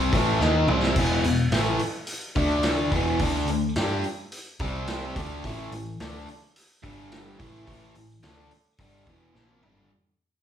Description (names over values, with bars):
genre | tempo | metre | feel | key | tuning
blues rock power trio and southern rock | 107 BPM | 4/4 | straight | unclear | A4 = 440 Hz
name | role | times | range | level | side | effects
biting overdriven guitar | riff | 0.0-9.9 s | E2 to G4 | -25 LUFS | left 1 dB | none
vintage muted picked electric bass | bass | 0.0-9.9 s | E1 to G2 | -30 LUFS | equal | none
vintage drum kit | drums | 0.1-9.9 s | crash cymbal, hi-hat, kick drum, snare drum, toms | -29 LUFS | equal | none
room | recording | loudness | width
moderate large studio reverb, RT60 0.8 s | band playing live in one room | -22 LUFS | side -9 dB against mid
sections
0.0-9.9 A section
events
fade-out 0.0-9.9; drum fill 0.4-1.0, 9.4-9.9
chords
0.0 A5; 1.0 E5; 2.4 D5; 2.9 E5; 3.2 D5; 4.6 C5; 5.2 D5; 5.4 A5; 6.8 G5; 7.4 A5; 8.8 E5